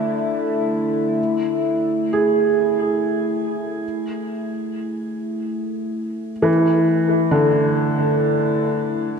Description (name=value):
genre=ambient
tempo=free time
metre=none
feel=none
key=unclear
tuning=A4 = 440 Hz
part: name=felt-muted upright piano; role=arpeggios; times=0.0-9.2 s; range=D3 to G#4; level=-19 LUFS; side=right 1 dB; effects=diffuse ambient delay, shimmer reverb
part: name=analog drone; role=drone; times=0.0-9.2 s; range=A3 to E4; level=-23 LUFS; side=left 1 dB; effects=chorus
room=wet lush hall reverb, RT60 2.5 s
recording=cassette tape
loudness=-18 LUFS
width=side -6 dB against mid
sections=0.0-9.1 A section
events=none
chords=0.0 A5; 1.2 Eadd11/A; 6.5 D5